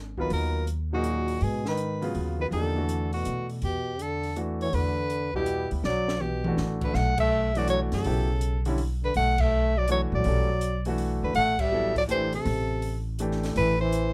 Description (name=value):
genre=modal jazz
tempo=163 BPM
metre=3/4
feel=swing 66% on 8ths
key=B phrygian from 6.9 s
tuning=A4 = 439 Hz
part: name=upright bass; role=bass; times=0.0-14.1 s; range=G#1 to B2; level=-31 LUFS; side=equal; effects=none
part: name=warm soprano saxophone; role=melody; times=0.2-14.1 s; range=F#4 to F#5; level=-31 LUFS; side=equal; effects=none
part: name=breathy trombone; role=second line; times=0.2-14.1 s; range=A#2 to A3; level=-34 LUFS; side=equal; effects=none
part: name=clear upright piano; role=accompaniment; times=0.2-13.8 s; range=C#3 to A#4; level=-34 LUFS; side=equal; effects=none
part: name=open jazz drum kit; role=drums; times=0.2-14.0 s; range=crash cymbal, hi-hat, kick drum, snare drum, toms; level=-38 LUFS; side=equal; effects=none
room=little or no reverb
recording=close, detailed microphones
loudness=-27 LUFS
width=mono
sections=0.0-6.9 A section; 6.9-14.1 B section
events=drum fill 5.8-6.6; band accent 7.1, 9.3, 11.5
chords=0.0 G#m9; 2.5 Em9; 6.9 Bm9; 11.4 Am7